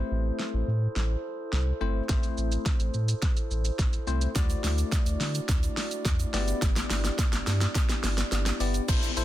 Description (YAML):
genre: dance-pop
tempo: 106 BPM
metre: 4/4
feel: straight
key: A dorian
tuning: A4 = 442 Hz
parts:
  - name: bell-like tine electric piano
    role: accompaniment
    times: 0.0-9.2 s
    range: A3 to D5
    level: -34 LUFS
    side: left 8 dB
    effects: sidechain pumping
  - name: glass harmonica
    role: sustained chords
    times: 0.0-9.2 s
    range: A3 to D5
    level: -36 LUFS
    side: right 1 dB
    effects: sidechain pumping
  - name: warm sub bass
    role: bass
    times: 0.0-9.2 s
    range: G1 to D3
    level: -28 LUFS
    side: equal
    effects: sidechain pumping
  - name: pop drum kit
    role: drums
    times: 0.4-9.2 s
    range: crash cymbal, hi-hat, kick drum, shaker, snare drum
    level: -27 LUFS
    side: equal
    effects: none
  - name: egg shaker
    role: percussion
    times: 4.4-9.2 s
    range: none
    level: -43 LUFS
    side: right 15 dB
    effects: none
  - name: downlifter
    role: sound effects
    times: 8.9-9.2 s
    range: none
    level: -32 LUFS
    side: left 2 dB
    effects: none
room: little or no reverb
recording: dense, heavily limited modern master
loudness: -25 LUFS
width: side -14 dB against mid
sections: 0.0-8.9 A section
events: build-up 0.0-8.9; drum fill 0.0-8.9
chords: 0.0 Am; 4.4 Dadd9; 6.3 G6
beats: 0.39 0.96 1.53 | 2.09 2.66 3.23 3.79 | 4.36 4.92 5.49 6.05 | 6.62 7.19 7.75 8.32 | 8.88